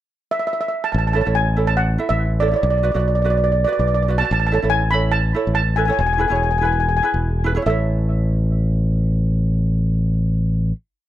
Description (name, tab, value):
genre	calypso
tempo	143 BPM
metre	4/4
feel	swing 53% on 16ths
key	A major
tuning	A4 = 440 Hz
part	steel pan	melody	0.3-10.7 s	D5 to B5	-20 LUFS	equal	analog delay
part	modern bright fingered electric bass	bass	0.9-10.7 s	E1 to B1	-18 LUFS	equal	none
part	ukulele	accompaniment	1.1-10.7 s	E4 to E5	-25 LUFS	right 4 dB	plate reverb
room	moderate studio reverb, RT60 0.6 s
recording	dark, warm production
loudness	-16 LUFS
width	side -13 dB against mid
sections	0.0-0.9 pickup bar; 0.9-7.7 verse; 7.7-11.0 final chord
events	none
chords	0.0 N.C.; 0.9 A; 2.6 Bm; 4.3 A; 6.0 E; 7.7 A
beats	0.10 0.52 | 0.94 1.36 1.78 2.20 | 2.62 3.04 3.46 3.88 | 4.30 4.72 5.14 5.56 | 5.98 6.40 6.82 7.24 | 7.66 8.08 8.50 8.92 | 9.34 9.76 10.18 10.60